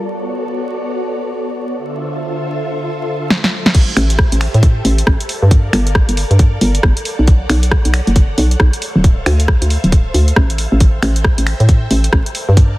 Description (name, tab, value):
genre	UK garage, two-step garage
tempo	136 BPM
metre	4/4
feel	swing 61% on 16ths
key	unclear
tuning	A4 = 441 Hz
part	soft string machine	sustained chords	0.0-12.8 s	D3 to A5	-23 LUFS	equal	ensemble chorus, sidechain pumping
part	punchy analog drum machine	drums	3.3-12.7 s	crash cymbal, finger snaps, hi-hat, rim click, snare drum	-18 LUFS	equal	studio reverb, soft clipping on snare
part	electronic kick drum	drums	3.7-12.7 s	none	-11 LUFS	equal	studio reverb
part	hollow knocking FM bass	bass	4.0-12.8 s	D1 to A2	-13 LUFS	equal	none
room	little or no reverb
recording	dense, heavily limited modern master, vinyl crackle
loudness	-12 LUFS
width	side -18 dB against mid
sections	0.0-3.7 A section; 3.7-12.8 B section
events	filter sweep on string machine 0.0-3.7; drum fill 3.3-3.7; drop 3.7-12.8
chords	0.0 Bm7; 1.8 Dm7; 3.7 Am7; 5.3 Gm7; 7.1 Bm7; 8.8 Dm7; 10.8 Am7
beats	| 0.22 0.66 1.10 1.54 | 1.98 2.42 2.86 3.31 | 3.75 4.19 4.63 5.07 | 5.51 5.95 6.39 6.83 | 7.28 7.72 8.16 8.60 | 9.04 9.48 9.92 10.36 | 10.80 11.25 11.69 12.13 | 12.57